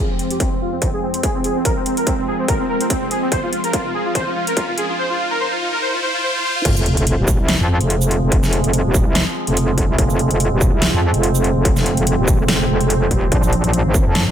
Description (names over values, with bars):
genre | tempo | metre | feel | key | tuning
heavy wobble dubstep | 144 BPM | 4/4 | swing 54% on 16ths, half-time | F minor | A4 = 439 Hz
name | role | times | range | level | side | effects
soft supersaw | melody | 0.0-6.6 s | C4 to C5 | -21 LUFS | equal | low-pass filter, digital delay
evolving wavetable pad | sustained chords | 0.0-14.3 s | F2 to Db4 | -23 LUFS | right 2 dB | phaser, built-in reverb, sidechain pumping
riser and sub drop | sound effects | 0.0-8.3 s | none | -26 LUFS | equal | none
dubstep drum kit | drums | 0.2-14.2 s | crash cymbal, hi-hat, shaker, snare drum | -21 LUFS | equal | studio reverb
electronic kick drum | drums | 0.4-14.0 s | none | -19 LUFS | equal | distortion, studio reverb
metallic wobble bass | bass | 6.7-14.3 s | Eb1 to F2 | -17 LUFS | equal | chorus, overdrive
room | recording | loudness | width
little or no reverb | high-pass filter | -15 LUFS | side -10 dB against mid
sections
0.0-6.7 A section; 6.7-14.3 B section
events
build-up 0.0-6.7; riser 0.0-6.7; filter sweep on supersaw synth 0.0-6.7; filter sweep 0.0-6.7; drum fill 3.3-5.0; drop 6.7-14.3; impact 6.7-8.3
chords
0.0 Fm; 13.3 Bbm